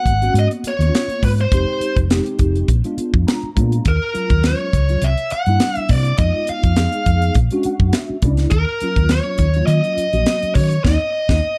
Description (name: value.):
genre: electric jazz fusion.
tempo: 103 BPM.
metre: 4/4.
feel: swing 53% on 16ths.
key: Eb minor.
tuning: A4 = 440 Hz.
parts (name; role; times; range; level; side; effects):
bluesy overdriven lead guitar; melody; 0.0-11.6 s; Bb4 to Gb5; -23 LUFS; equal; distortion.
mellow tine electric piano; accompaniment; 0.0-11.4 s; Gb3 to Bb5; -26 LUFS; equal; ensemble chorus.
hollow-body short-scale fingered electric bass; bass; 0.1-11.4 s; F1 to Eb3; -19 LUFS; equal; none.
tight funk drum kit; drums; 0.1-11.4 s; hi-hat, kick drum, snare drum; -21 LUFS; equal; none.
room: little or no reverb.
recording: dark, warm production.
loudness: -17 LUFS.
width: mono.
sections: 0.0-11.6 A section.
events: tine electric piano fill 3.0-3.9, 7.4-8.5; band accent 10.8-11.6.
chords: 0.0 Abm11; 1.5 Fm7; 2.7 Bb7b9; 3.9 Ebm11; 5.0 C7; 6.2 Fm7b5; 7.4 Bb7alt; 8.5 Ebm9.